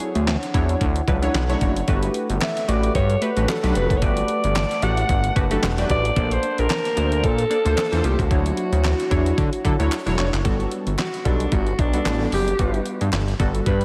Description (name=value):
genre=early-eighties boogie funk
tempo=112 BPM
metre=4/4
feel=swing 56% on 16ths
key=G lydian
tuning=A4 = 441 Hz
part: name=funky polysynth comp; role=accompaniment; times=0.0-13.7 s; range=F#3 to D5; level=-29 LUFS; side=equal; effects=chorus
part: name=glass harmonica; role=sustained chords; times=0.0-10.4 s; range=A3 to A5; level=-34 LUFS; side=equal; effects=none
part: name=detuned 8-bit digital drum machine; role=drums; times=0.0-13.8 s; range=handclaps, hi-hat, kick drum, snare drum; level=-27 LUFS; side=equal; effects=none
part: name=chorused synth bass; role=bass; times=0.2-13.8 s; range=E1 to D3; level=-24 LUFS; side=equal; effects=none
part: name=analog synth brass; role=second line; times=1.2-10.3 s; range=F#3 to C#5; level=-34 LUFS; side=equal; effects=none
part: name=growling alto saxophone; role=melody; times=2.4-13.8 s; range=D4 to F#5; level=-27 LUFS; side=equal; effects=delay
part: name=group handclap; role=percussion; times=2.4-13.3 s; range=none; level=-39 LUFS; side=equal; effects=none
room=moderate lush hall reverb, RT60 1.9 s, small room ambience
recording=dreamy mix soaked in reverb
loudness=-21 LUFS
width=mono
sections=0.0-10.5 A section; 10.5-13.8 B section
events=drum fill 9.9-10.5; alto saxophone solo 10.5-13.8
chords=0.0 Dmaj9; 1.9 Gmaj9; 6.2 Bbmaj9; 8.3 Dmaj9; 10.5 Gmaj9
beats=0.27 0.81 1.34 | 1.88 2.42 2.95 3.49 | 4.02 4.56 5.09 5.63 | 6.17 6.70 7.24 7.77 | 8.31 8.84 9.38 9.91 | 10.45 10.99 11.52 12.06 | 12.59 13.13 13.66